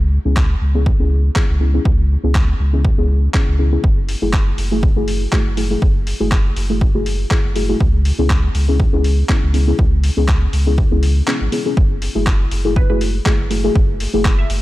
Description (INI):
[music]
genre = deep house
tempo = 121 BPM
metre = 4/4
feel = swing 55% on 16ths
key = F# minor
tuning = A4 = 442 Hz
[part]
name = warm sub bass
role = bass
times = 0.0-14.6 s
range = F#1 to C#2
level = -17 LUFS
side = equal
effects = sidechain pumping
[part]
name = deep mellow chord stab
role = stabs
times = 0.3-14.6 s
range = A3 to G#4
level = -21 LUFS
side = left 2 dB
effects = chorus, sidechain pumping, dub echo
[part]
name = dusty soul sampler-style drum kit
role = drums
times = 0.4-14.6 s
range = handclaps, hi-hat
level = -25 LUFS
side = equal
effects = none
[part]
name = electronic kick drum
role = drums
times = 0.4-14.4 s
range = none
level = -16 LUFS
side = equal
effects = none
[part]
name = glassy wavetable pluck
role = melody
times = 12.8-14.5 s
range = B4 to E5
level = -29 LUFS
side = right 7 dB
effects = chorus, dub echo
[sound]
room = digital ambience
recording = dark, warm production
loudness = -14 LUFS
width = side -17 dB against mid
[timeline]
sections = 0.0-14.6 A section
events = filter sweep on synth stab 0.0-14.6; break 11.3-11.8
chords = 0.0 C#m7; 3.8 F#m9; 7.8 C#m7; 11.8 F#m9